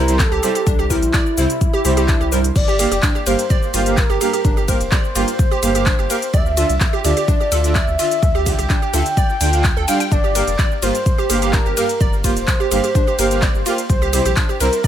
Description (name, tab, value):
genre	progressive house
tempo	127 BPM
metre	4/4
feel	straight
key	G dorian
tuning	A4 = 440 Hz
part	warm velvety synth lead	melody	0.0-14.9 s	E4 to G5	-22 LUFS	left 1 dB	chorus, ping-pong delay
part	glassy wavetable pluck	arpeggios	0.0-14.9 s	D4 to G5	-24 LUFS	right 3 dB	chorus, sidechain pumping, ping-pong delay
part	soft supersaw	stabs	0.0-14.7 s	G2 to G5	-22 LUFS	right 3 dB	cassette tape, sidechain pumping, ping-pong delay
part	round analog bass	bass	0.0-14.7 s	F1 to D2	-21 LUFS	equal	sidechain pumping
part	deep house drum kit	drums	0.1-14.9 s	cabasa, crash cymbal, handclaps, hi-hat, ride cymbal	-24 LUFS	left 1 dB	none
part	electronic kick drum	drums	0.2-14.9 s	none	-17 LUFS	equal	none
room	little or no reverb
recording	none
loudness	-14 LUFS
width	side -10 dB against mid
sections	0.0-14.9 A section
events	none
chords	0.0 C; 2.6 Gm7; 6.3 Dmadd9; 10.1 Gm7; 13.9 C